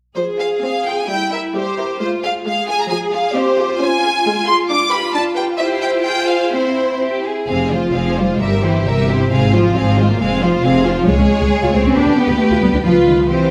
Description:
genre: quick classical-period movement for string orchestra.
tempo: 133 BPM.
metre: 2/4.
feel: rubato.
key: F minor.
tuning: A4 = 440 Hz.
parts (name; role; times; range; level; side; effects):
warm symphonic violin section; melody; 0.2-13.5 s; B4 to D6; -22 LUFS; equal; none.
warm symphonic viola section; accompaniment; 0.2-13.5 s; F3 to G4; -22 LUFS; equal; none.
rich symphonic cello section; bass; 0.2-13.5 s; C3 to Ab4; -21 LUFS; equal; none.
rich symphonic violin section; second line; 0.4-13.5 s; E4 to C5; -25 LUFS; equal; none.
clear symphonic double bass section; bass; 7.5-13.5 s; F1 to D2; -21 LUFS; equal; none.
room: wet scoring stage reverb, RT60 1.8 s.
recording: none.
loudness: -16 LUFS.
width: mono.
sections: 0.2-7.5 A section; 7.5-13.5 A section.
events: none.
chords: 0.2 Fm; 1.1 C7/G; 2.0 Fm/Ab; 2.9 Fm; 3.8 Db; 4.7 G7/D; 5.6 C/E; 6.0 Fm; 6.5 C; 7.5 Fm; 8.4 C7/G; 9.3 Fm/Ab; 10.2 Fm; 11.1 Db5; 12.0 G/D; 12.8 Db7.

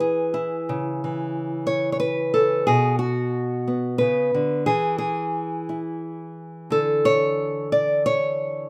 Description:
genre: folk, solo fingerstyle acoustic guitar.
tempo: 90 BPM.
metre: 3/4.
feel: straight.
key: unclear.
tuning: A4 = 440 Hz.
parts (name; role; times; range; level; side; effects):
nylon-string guitar; solo; 0.0-8.7 s; B2 to D5; -23 LUFS; equal; none.
room: light reverb.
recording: none.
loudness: -23 LUFS.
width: mono.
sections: 0.0-8.7 A section.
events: none.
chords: 0.0 N.C.; 0.7 C#m; 2.7 Bm; 4.7 N.C.; 6.7 Dsus2.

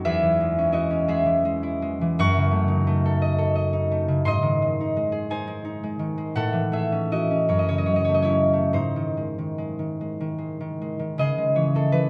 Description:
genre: classical, solo harp piece.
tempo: 47-60 BPM (dotted quarters).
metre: 6/8.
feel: rubato.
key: C# minor.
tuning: A4 = 445 Hz.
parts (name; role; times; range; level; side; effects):
concert harp; solo; 0.0-12.1 s; E2 to C#6; -23 LUFS; equal; none.
room: light reverb.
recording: none.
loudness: -23 LUFS.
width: mono.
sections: 0.0-11.2 A section.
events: none.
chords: 0.0 C#m/E; 2.2 D#m7b5/F#; 4.3 G#; 6.4 A; 7.5 F#m; 8.7 G#; 11.2 C#m.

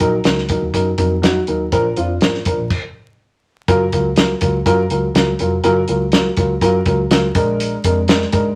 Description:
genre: uptempo 1960s-style soul.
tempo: 123 BPM.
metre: 4/4.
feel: straight.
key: unclear.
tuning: A4 = 440 Hz.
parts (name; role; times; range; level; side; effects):
dark upright piano; accompaniment; 0.0-8.5 s; F3 to Bb4; -19 LUFS; equal; none.
vintage muted fingered electric bass; bass; 0.0-8.5 s; F1 to Ab2; -24 LUFS; equal; none.
warm soul drum kit; drums; 0.0-8.4 s; crash cymbal, hi-hat, kick drum, snare drum; -20 LUFS; equal; none.
room: moderate studio reverb, RT60 0.6 s.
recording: vinyl crackle.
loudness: -16 LUFS.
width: mono.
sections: 0.0-3.7 A section; 3.7-8.6 B section.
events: stop 2.7-3.7.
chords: 0.0 Ebm; 1.7 Bb; 3.7 Gbmaj7; 7.3 Bb7.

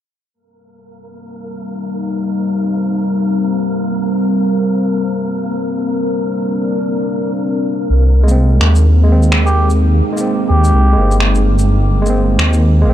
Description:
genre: future garage.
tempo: 127 BPM.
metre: 4/4.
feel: swing 61% on 16ths.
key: C minor.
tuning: A4 = 438 Hz.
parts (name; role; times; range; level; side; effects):
deep dark ambient pad; sustained chords; 1.5-12.9 s; G3 to C5; -18 LUFS; left 1 dB; chorus, built-in reverb.
wind-like tuned noise texture; texture; 0.9-12.9 s; Bb3 to Bb4; -26 LUFS; equal; built-in reverb.
dark detuned saw bass; bass; 7.9-12.9 s; G1 to Eb2; -10 LUFS; equal; none.
tine electric piano; accompaniment; 8.2-12.9 s; Ab3 to C4; -18 LUFS; right 2 dB; overdrive, tape echo.
electronic shaker and finger snaps; drums; 8.3-12.6 s; none; -20 LUFS; equal; overdrive.
trumpet with cup mute; melody; 9.5-11.2 s; G4; -21 LUFS; equal; vintage 12-bit sampler grit, tape echo.
room: light reverb, digital ambience.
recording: none.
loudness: -12 LUFS.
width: side -12 dB against mid.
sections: 0.3-12.9 A section.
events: none.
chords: 0.3 Cm7; 7.9 Abadd9.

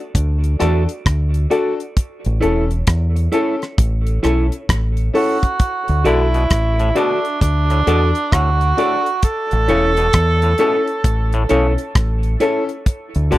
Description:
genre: roots reggae.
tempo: 66 BPM.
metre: 4/4.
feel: swing 63% on 16ths.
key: D major.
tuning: A4 = 440 Hz.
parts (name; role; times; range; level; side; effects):
damped 70s drum kit; drums; 0.1-13.4 s; hi-hat, kick drum, rim click; -17 LUFS; equal; none.
deep dub fingered electric bass; bass; 0.2-13.4 s; E1 to E2; -16 LUFS; equal; transformer saturation.
mellow electric guitar; accompaniment; 0.6-13.4 s; E4 to D5; -23 LUFS; right 3 dB; spring reverb, dub echo.
warm upright piano; stabs; 0.6-13.4 s; C#4 to A4; -20 LUFS; left 6 dB; none.
warm tenor saxophone; melody; 5.2-11.9 s; D4 to A4; -20 LUFS; right 2 dB; dub echo.
overdriven clav; arpeggios; 6.1-13.4 s; A2 to D3; -26 LUFS; left 4 dB; none.
room: little or no reverb.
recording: dry, close 1970s-style studio recording.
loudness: -15 LUFS.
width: side -16 dB against mid.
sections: 0.0-13.4 A section.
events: none.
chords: 0.0 D; 2.0 A; 5.6 D; 9.2 A; 12.9 D.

